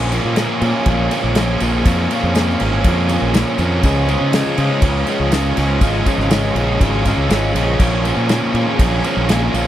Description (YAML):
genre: indie rock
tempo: 121 BPM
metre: 4/4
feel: straight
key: Bb minor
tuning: A4 = 438 Hz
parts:
  - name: analog string pad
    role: sustained chords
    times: 0.0-9.7 s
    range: F4 to Bb5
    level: -29 LUFS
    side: right 2 dB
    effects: ensemble chorus
  - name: biting overdriven guitar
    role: riff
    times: 0.0-9.7 s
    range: Bb2 to Db4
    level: -20 LUFS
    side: right 6 dB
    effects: lush chorus
  - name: thick fuzz guitar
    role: riff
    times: 0.0-9.7 s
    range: Bb2 to F4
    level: -21 LUFS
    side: left 7 dB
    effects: distortion
  - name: growling fingered electric bass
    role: bass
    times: 0.0-9.7 s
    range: Ab1 to Db3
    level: -19 LUFS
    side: equal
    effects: overdrive
  - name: unplugged drum kit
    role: drums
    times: 0.1-9.7 s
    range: crash cymbal, kick drum, ride cymbal, snare drum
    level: -20 LUFS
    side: equal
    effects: none
  - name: tambourine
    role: percussion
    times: 0.1-9.7 s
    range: none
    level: -38 LUFS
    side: left 13 dB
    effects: none
room: little or no reverb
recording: dry, close 1970s-style studio recording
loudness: -14 LUFS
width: side -12 dB against mid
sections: 0.0-9.7 A section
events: none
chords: 0.0 Bbm7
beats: 0.37 0.86 1.36 | 1.86 2.35 2.85 3.34 | 3.84 4.33 4.83 5.32 | 5.82 6.31 6.81 7.30 | 7.80 8.30 8.79 9.29